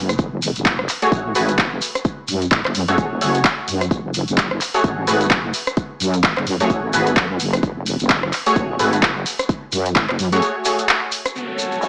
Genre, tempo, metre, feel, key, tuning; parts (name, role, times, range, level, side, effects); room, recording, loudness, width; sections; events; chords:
bass house; 129 BPM; 4/4; swing 58% on 16ths; F# minor; A4 = 439 Hz
wobble bass; bass; 0.0-10.4 s; E1 to F#2; -24 LUFS; equal; chorus, overdrive, sidechain pumping
house drum kit; drums; 0.1-11.9 s; crash cymbal, handclaps, hi-hat, rim click; -22 LUFS; equal; low-pass filter on hats, studio reverb, low-pass filter on snare, low-pass filter on cymbals
shekere; percussion; 0.1-11.9 s; -31 LUFS; equal
electronic kick drum; drums; 0.2-10.1 s; -23 LUFS; equal; studio reverb
orchestra-hit-like synth stab; stabs; 1.0-11.3 s; A3 to C#5; -23 LUFS; equal; built-in reverb, phaser, sidechain pumping, dub echo
downlifter; sound effects; 11.4-11.9 s; -30 LUFS; equal
rich studio string section; texture; 11.4-11.9 s; F#4 to G#5; -26 LUFS; equal; sidechain pumping
light reverb; small speaker sound; -19 LUFS; mono
0.0-11.4 A section
filter sweep on wobble bass 0.0-11.4; kick drops out 10.4-11.4
0.0 F#madd9